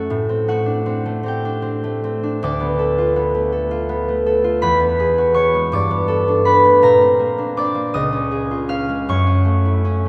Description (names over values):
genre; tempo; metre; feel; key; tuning
classical, solo harp piece; 54 BPM (dotted quarters); 6/8; uneven beats, rubato; unclear; A4 = 440 Hz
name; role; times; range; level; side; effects
concert harp; solo; 0.0-10.1 s; C#2 to E#6; -18 LUFS; equal; none
room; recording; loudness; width
wet church reverb, RT60 3.0 s; none; -18 LUFS; mono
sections
0.0-10.1 A section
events
none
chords
0.1 Am7; 2.4 Dm6; 4.6 Eadd9; 5.7 Gadd9; 6.8 A#add9; 7.9 C#add9; 9.1 F#m7